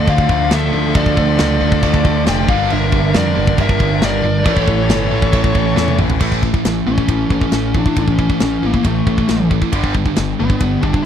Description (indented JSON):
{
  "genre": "heavy metal",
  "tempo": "137 BPM",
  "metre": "4/4",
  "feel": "straight",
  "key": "A phrygian dominant",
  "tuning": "A4 = 445 Hz",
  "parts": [
    { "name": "high-gain lead guitar", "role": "melody", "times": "0.0-11.1 s", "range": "A3 to G5", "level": "-19 LUFS", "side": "left 3 dB", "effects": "distortion, slapback echo" },
    { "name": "high-gain lead guitar", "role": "second line", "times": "0.0-6.0 s", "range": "A4 to D5", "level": "-25 LUFS", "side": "right 6 dB", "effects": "distortion" },
    { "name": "warm studio string section", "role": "sustained chords", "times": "0.0-6.2 s", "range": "D3 to A5", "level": "-30 LUFS", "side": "right 2 dB", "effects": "none" },
    { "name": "distorted electric guitar", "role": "riff", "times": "0.0-11.0 s", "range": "G2 to A3", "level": "-24 LUFS", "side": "left 13 dB", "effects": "overdrive" },
    { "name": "heavy high-gain guitar", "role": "riff", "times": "0.0-11.0 s", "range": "G2 to A3", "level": "-22 LUFS", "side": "right 13 dB", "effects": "distortion" },
    { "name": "thick fuzz guitar", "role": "riff", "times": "0.0-11.1 s", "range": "G2 to A4", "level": "-22 LUFS", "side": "equal", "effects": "distortion" },
    { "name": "growling picked electric bass", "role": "bass", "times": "0.0-11.0 s", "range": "F1 to F2", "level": "-19 LUFS", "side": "equal", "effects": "overdrive" },
    { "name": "tight metal drum kit", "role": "drums", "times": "0.1-11.0 s", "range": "china cymbal, crash cymbal, kick drum, ride cymbal, snare drum, toms", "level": "-17 LUFS", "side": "equal", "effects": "none" }
  ],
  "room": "little or no reverb",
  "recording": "dry, close 1970s-style studio recording",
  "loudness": "-13 LUFS",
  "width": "side -9 dB against mid",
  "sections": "0.0-6.2 A section; 6.2-11.1 B section",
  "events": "drum fill 5.8-6.2",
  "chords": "0.0 Dm; 2.5 Gm; 4.5 A; 9.7 G"
}